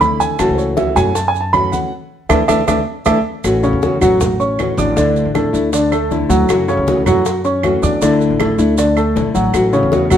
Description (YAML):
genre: latin, Cuban son and guajira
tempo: 157 BPM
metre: 4/4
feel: straight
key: unclear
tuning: A4 = 442 Hz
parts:
  - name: nylon-string guitar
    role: accompaniment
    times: 0.0-10.2 s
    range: C#3 to F#4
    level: -17 LUFS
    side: left 2 dB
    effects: none
  - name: warm baby grand piano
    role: arpeggios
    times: 0.0-10.2 s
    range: C#3 to D6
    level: -16 LUFS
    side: right 2 dB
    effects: none
  - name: upright bass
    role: bass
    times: 0.0-10.2 s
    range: A1 to F#2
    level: -20 LUFS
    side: equal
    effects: none
  - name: bongos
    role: percussion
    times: 0.0-10.2 s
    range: none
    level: -25 LUFS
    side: left 4 dB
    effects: none
  - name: congas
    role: percussion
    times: 0.0-10.2 s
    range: none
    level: -23 LUFS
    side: left 2 dB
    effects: none
  - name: maracas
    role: percussion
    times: 0.0-10.2 s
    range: none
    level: -31 LUFS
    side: right 7 dB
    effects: none
  - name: claves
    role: percussion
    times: 0.4-10.2 s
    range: none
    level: -28 LUFS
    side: right 8 dB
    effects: none
room: moderate studio reverb, RT60 0.9 s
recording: none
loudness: -12 LUFS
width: side -9 dB against mid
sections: 0.0-3.4 A section; 3.4-10.2 B section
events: grand piano solo 0.0-3.4; band accent 1.9-3.4; drum fill 2.7-3.4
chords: 0.4 F#m7; 1.9 Dsus2; 3.4 A6; 5.0 Dsus2; 6.5 F#m7; 8.0 Dsus2; 9.5 A6